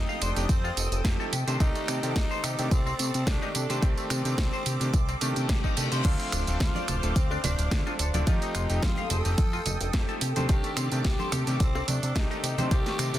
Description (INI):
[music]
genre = nu-disco, nu disco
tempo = 108 BPM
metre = 4/4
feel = swing 54% on 16ths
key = C dorian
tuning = A4 = 440 Hz
[part]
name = growling tenor saxophone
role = melody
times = 0.0-13.2 s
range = C4 to A4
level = -36 LUFS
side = left 1 dB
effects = dub echo
[part]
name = bright electric grand piano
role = accompaniment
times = 0.0-13.2 s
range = Eb3 to D5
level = -35 LUFS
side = equal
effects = sidechain pumping
[part]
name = lush unison pad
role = sustained chords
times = 0.0-13.2 s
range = A4 to Eb6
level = -37 LUFS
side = right 1 dB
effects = chorus, phaser, sidechain pumping
[part]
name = fat analog bass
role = bass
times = 0.0-13.2 s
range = D1 to C3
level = -30 LUFS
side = equal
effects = sidechain pumping
[part]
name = semi-hollow electric guitar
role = riff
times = 0.1-13.1 s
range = A3 to F5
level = -36 LUFS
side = left 3 dB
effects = wide subtle chorus
[part]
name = house drum kit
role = drums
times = 0.1-13.2 s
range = crash cymbal, finger snaps, hi-hat, snare drum, tambourine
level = -33 LUFS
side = right 2 dB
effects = soft clipping on snare
[part]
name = electronic kick drum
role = drums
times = 0.5-12.8 s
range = none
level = -26 LUFS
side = equal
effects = none
[part]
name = reverse cymbal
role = sound effects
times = 5.2-6.0 s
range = none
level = -38 LUFS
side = left 6 dB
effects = none
[part]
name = maracas, bongos and congas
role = percussion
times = 6.0-13.2 s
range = none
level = -36 LUFS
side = right 1 dB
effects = none
[sound]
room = little or no reverb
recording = dense, heavily limited modern master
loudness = -24 LUFS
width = side -13 dB against mid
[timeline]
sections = 0.0-13.2 A section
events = reverse cymbal 5.2-6.0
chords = 0.0 F9; 1.3 Cm69; 6.0 Dm7; 8.3 F9; 10.2 Cm69